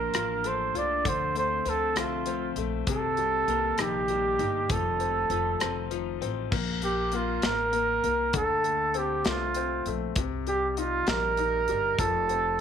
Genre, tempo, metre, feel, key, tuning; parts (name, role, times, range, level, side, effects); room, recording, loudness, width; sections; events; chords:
six-eight pop ballad; 66 BPM (dotted quarters); 6/8; straight; A4 = 440 Hz
warm flugelhorn; melody; 0.0-12.6 s; F4 to D5; -26 LUFS; right 3 dB
clear concert grand piano; accompaniment; 0.0-12.6 s; C3 to A4; -33 LUFS; left 13 dB
twelve-string electric guitar; arpeggios; 0.0-6.5 s; F2 to G4; -38 LUFS; left 12 dB
upright bass; bass; 0.0-12.6 s; F1 to D2; -35 LUFS; equal
modern studio drum kit; drums; 0.1-12.4 s; crash cymbal, hi-hat, kick drum, rim click, snare drum; -32 LUFS; left 1 dB
moderate plate reverb, RT60 1.1 s, small room ambience; 1960s-style stereo; -25 LUFS; side -8 dB against mid
0.0-6.5 A section; 6.5-12.6 B section
0.0 Bbmaj7; 1.1 Dm7; 2.9 Cm7; 4.7 F7; 6.5 Gmadd9 (rootless); 8.3 Dm7; 10.2 Cm7; 12.0 F